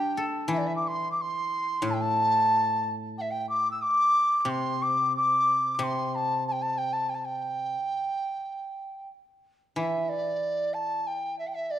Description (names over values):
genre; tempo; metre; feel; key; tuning
chinese traditional, Chinese chamber ensemble; 91 BPM; 2/4; rubato; G zhi mode; A4 = 440 Hz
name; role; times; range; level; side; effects
mellow large dizi; melody; 0.0-11.8 s; D5 to E6; -26 LUFS; equal; none
guzheng; accompaniment; 0.0-7.7, 9.8-11.7 s; A2 to A4; -33 LUFS; left 2 dB; none
room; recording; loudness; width
moderate scoring stage reverb, RT60 1.6 s; dark, warm production; -25 LUFS; side -11 dB against mid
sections
0.0-9.8 A section; 9.8-11.8 B section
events
none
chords
none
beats
| 0.50 1.17 | 1.83 2.49 | 3.14 3.81 | 4.48 5.15 | 5.82 6.46 | 7.10 7.76 | 8.41 9.08 | 9.77 10.44 | 11.10 11.75